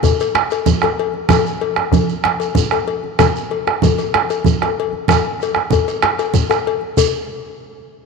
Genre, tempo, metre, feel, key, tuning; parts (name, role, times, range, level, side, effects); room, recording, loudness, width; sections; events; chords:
west african traditional, West African drum ensemble; 127 BPM (dotted quarters); 12/8; straight
bombo; percussion; 0.0-7.1 s; -18 LUFS; right 2 dB
congas; percussion; 0.0-7.1 s; -21 LUFS; right 8 dB
cowbell; percussion; 0.0-7.1 s; -21 LUFS; left 12 dB
djembe; percussion; 0.0-7.1 s; -23 LUFS; left 9 dB
shekere; percussion; 0.0-7.1 s; -26 LUFS; right 6 dB
moderate plate reverb, RT60 2.9 s; 1960s-style stereo with parts hard left and right; -14 LUFS; side -4 dB against mid
0.0-7.0 A section; 7.0-8.1 B section